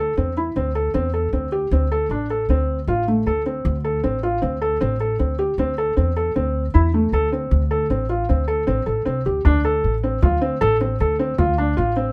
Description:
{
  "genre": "contemporary instrumental, chamber music in an uneven meter",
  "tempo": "155 BPM",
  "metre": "5/4",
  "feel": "straight",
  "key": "D minor",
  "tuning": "A4 = 440 Hz",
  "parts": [
    { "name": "felt-muted upright piano", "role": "arpeggios", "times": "0.0-12.1 s", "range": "A3 to A4", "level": "-23 LUFS", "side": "equal", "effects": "none" },
    { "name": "upright bass", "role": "bass", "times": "0.0-12.1 s", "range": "A1 to E2", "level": "-24 LUFS", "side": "equal", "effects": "none" },
    { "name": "frame drum", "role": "percussion", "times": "9.4-11.7 s", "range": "none", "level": "-25 LUFS", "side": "equal", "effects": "none" }
  ],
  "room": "light reverb",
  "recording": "none",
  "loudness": "-21 LUFS",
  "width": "mono",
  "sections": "0.0-9.4 A section; 9.4-12.1 B section",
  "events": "none",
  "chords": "0.0 Am/D; 1.7 D7(no3); 5.6 Am/D; 7.5 D7(no3); 9.4 Dm7"
}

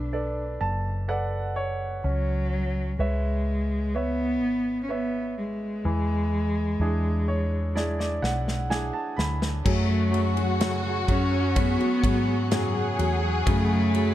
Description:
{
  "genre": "pop ballad",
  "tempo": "63 BPM",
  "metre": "4/4",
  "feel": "straight",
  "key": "F# minor",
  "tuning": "A4 = 440 Hz",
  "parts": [
    { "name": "dark cello", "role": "melody", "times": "0.0-14.1 s", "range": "F#3 to D4", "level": "-28 LUFS", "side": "equal", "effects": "none" },
    { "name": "clear concert grand piano", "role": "accompaniment", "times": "0.0-14.1 s", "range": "C#3 to B5", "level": "-31 LUFS", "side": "right 2 dB", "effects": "none" },
    { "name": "hollow-body short-scale fingered electric bass", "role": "bass", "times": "0.0-14.1 s", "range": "F#1 to G#2", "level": "-27 LUFS", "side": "equal", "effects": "none" },
    { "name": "modern studio drum kit", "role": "drums", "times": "7.8-14.1 s", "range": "crash cymbal, kick drum, ride cymbal, snare drum", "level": "-29 LUFS", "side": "equal", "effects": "none" },
    { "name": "warm studio violin section", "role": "second line", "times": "9.7-14.1 s", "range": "F#4 to G#4", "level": "-32 LUFS", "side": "left 2 dB", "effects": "digital delay" },
    { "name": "airy breathy pad", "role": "sustained chords", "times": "9.9-14.1 s", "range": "G#4 to C#6", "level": "-33 LUFS", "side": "equal", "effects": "chorus, phaser" },
    { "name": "nylon-string guitar", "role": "arpeggios", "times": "9.7-14.1 s", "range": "F#2 to G#4", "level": "-32 LUFS", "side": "left 7 dB", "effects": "none" }
  ],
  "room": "light reverb",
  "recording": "dark, warm production",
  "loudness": "-23 LUFS",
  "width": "side -13 dB against mid",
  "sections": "0.0-9.7 A section; 9.7-14.1 B section",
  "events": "grand piano fill 0.1-2.0, 6.8-9.7; drum fill 7.8-9.7",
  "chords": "0.0 Bm7; 2.0 C#m7; 5.8 E7; 9.7 F#madd9"
}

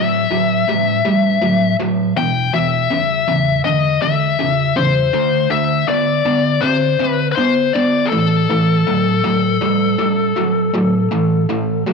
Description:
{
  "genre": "rock",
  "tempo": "80 BPM",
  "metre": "4/4",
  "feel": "straight",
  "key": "unclear",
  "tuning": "A4 = 440 Hz",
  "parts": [
    { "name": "bluesy overdriven lead guitar", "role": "melody", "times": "0.0-11.9 s", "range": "G#4 to G5", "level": "-17 LUFS", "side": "left 9 dB", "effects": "distortion" },
    { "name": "distorted electric guitar", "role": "riff", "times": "0.0-11.9 s", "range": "E2 to C4", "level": "-16 LUFS", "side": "right 2 dB", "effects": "distortion" }
  ],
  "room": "moderate echo chamber reverb, RT60 2.2 s",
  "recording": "none",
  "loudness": "-14 LUFS",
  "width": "side -4 dB against mid",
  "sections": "0.0-11.9 A section",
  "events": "none",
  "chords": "0.0 A7(no3); 2.2 E5; 5.1 D5; 8.1 A5"
}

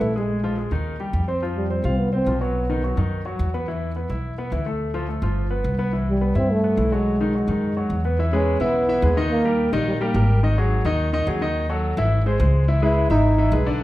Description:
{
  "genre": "Afro-Cuban jazz",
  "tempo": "213 BPM",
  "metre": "4/4",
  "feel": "straight",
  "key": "E major from 8.2 s",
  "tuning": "A4 = 440 Hz",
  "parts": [
    { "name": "breathy trombone", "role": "melody", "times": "0.0-3.0, 6.1-10.3, 12.8-13.6 s", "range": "G3 to E4", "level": "-22 LUFS", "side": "equal", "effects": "none" },
    { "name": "clear concert grand piano", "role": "accompaniment", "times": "0.0-13.8 s", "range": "D3 to F5", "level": "-25 LUFS", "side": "left 1 dB", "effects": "none" },
    { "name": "upright bass", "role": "bass", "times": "0.0-13.8 s", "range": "G1 to G2", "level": "-22 LUFS", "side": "equal", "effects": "none" }
  ],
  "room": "moderate recital hall reverb, RT60 1.4 s",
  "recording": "recorded in a church or concert hall",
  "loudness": "-19 LUFS",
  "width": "side -16 dB against mid",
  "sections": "0.0-8.2 A section; 8.2-13.8 B section",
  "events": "none",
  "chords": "0.3 Bb5; 0.9 Ebadd9; 1.4 F5; 2.5 B; 3.7 E5; 4.8 Dm; 5.4 G7; 5.9 Cmaj7; 7.1 B6; 8.2 E6; 9.3 D#; 10.4 G#5; 11.6 D#dim; 12.1 G#aug; 12.7 C#m9"
}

